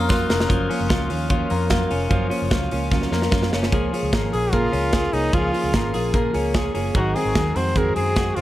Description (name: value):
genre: jangly indie pop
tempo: 149 BPM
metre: 4/4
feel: straight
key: Db major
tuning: A4 = 442 Hz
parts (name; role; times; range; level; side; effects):
- bright trumpet; melody; 0.0-0.1, 4.3-8.4 s; Eb4 to C5; -25 LUFS; equal; none
- glockenspiel with hard plastic mallets; second line; 0.0-0.5 s; Gb6; -33 LUFS; left 4 dB; none
- fingerpicked plugged-in steel-string acoustic guitar; accompaniment; 0.0-8.4 s; Ab2 to Ab4; -26 LUFS; right 5 dB; none
- warm studio string section; sustained chords; 0.0-0.5 s; none; barely audible; none; none
- twelve-string electric guitar; arpeggios; 0.0-8.4 s; Eb3 to Ab4; -25 LUFS; left 4 dB; spring reverb, analog delay
- vintage muted fingered electric bass; bass; 0.0-8.4 s; F1 to Gb2; -25 LUFS; equal; none
- modern studio drum kit; drums; 0.1-8.4 s; hi-hat, kick drum, snare drum; -24 LUFS; equal; none
room: light reverb, small room ambience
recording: none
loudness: -18 LUFS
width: side -14 dB against mid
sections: 0.5-3.7 A section; 3.7-8.4 B section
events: drum fill 0.1-0.5, 2.9-3.7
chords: 0.5 Gbmaj7; 3.7 Db6; 6.9 Ab7